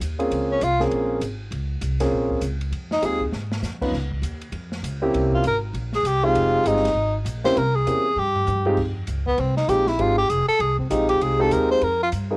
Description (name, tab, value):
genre	jazz, small-group swing and bop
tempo	198 BPM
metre	4/4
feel	swing 62% on 8ths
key	F minor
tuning	A4 = 440 Hz
part	upright bass	bass	0.0-12.4 s	F1 to Ab2	-26 LUFS	equal	none
part	open jazz drum kit	drums	0.0-12.2 s	crash cymbal, hi-hat, kick drum, ride cymbal, snare drum, toms	-33 LUFS	equal	none
part	warm grand piano	accompaniment	0.2-12.4 s	Ab3 to B4	-22 LUFS	equal	cassette tape
part	breathy tenor saxophone	melody	0.5-0.8, 2.9-3.2, 5.3-12.1 s	B3 to C5	-21 LUFS	equal	cassette tape
room	small room ambience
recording	home recording on cassette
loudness	-19 LUFS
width	side -28 dB against mid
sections	0.0-8.8 A section; 8.8-12.4 A section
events	tenor saxophone solo 0.0-12.4; drum fill 3.3-3.6, 8.2-8.8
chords	0.0 Bbm7; 2.7 Fm7; 3.9 Db; 5.1 C7b9; 6.4 Fm7; 7.6 C7b9; 8.8 Fm7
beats	0.01 | 0.32 0.62 0.92 1.22 | 1.52 1.82 2.12 2.43 | 2.73 3.03 3.33 3.63 | 3.93 4.24 4.54 4.84 | 5.14 5.44 5.75 6.05 | 6.35 6.66 6.96 7.26 | 7.57 7.87 8.17 8.47 | 8.78 9.08 9.39 9.69 | 10.00 10.30 10.60 10.91 | 11.21 11.52 11.82 12.12